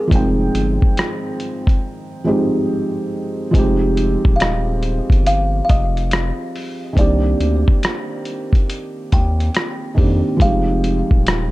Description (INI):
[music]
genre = lo-fi hip hop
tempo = 70 BPM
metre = 4/4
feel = swing 65% on 16ths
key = F dorian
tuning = A4 = 440 Hz
[part]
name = kalimba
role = melody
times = 0.0-11.5 s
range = Ab4 to G5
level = -25 LUFS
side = equal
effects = low-pass filter, tape echo
[part]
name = felt-muted upright piano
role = accompaniment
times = 0.0-11.5 s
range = Eb3 to G5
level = -20 LUFS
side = right 1 dB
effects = low-pass filter
[part]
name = saturated sub bass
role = bass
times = 0.1-11.5 s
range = Eb1 to F2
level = -19 LUFS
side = equal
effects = none
[part]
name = lo-fi sampler-style drum kit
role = drums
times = 0.1-11.5 s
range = hi-hat, kick drum, rim click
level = -16 LUFS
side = equal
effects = none
[sound]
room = digital ambience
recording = dark, warm production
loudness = -15 LUFS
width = side -18 dB against mid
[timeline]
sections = 0.0-3.5 A section; 3.5-11.5 B section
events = break 1.8-3.5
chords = 0.0 Fm9; 7.0 Cm9; 10.4 Fm9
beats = | 0.11 0.97 1.83 2.69 | 3.54 4.40 5.26 6.11 | 6.97 7.83 8.69 9.54 | 10.40 11.26